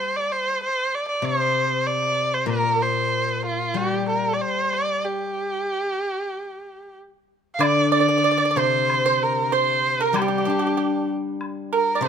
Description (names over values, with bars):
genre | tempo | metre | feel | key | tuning
chinese traditional, Chinese chamber ensemble | 95 BPM | 4/4 | rubato | G yu mode | A4 = 440 Hz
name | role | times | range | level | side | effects
rich erhu | melody | 0.0-12.1 s | F4 to F5 | -22 LUFS | right 1 dB | none
steel-string zither | accompaniment | 0.0-12.1 s | Bb2 to D4 | -25 LUFS | left 4 dB | none
pipa | second line | 7.6-12.1 s | G4 to D5 | -23 LUFS | right 7 dB | none
woodblock | percussion | 7.6-11.6 s | none | -30 LUFS | left 2 dB | none
room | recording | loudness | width
light reverb | close, detailed microphones | -20 LUFS | side -7 dB against mid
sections
0.0-7.6 A section; 7.6-12.1 B section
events
none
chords
none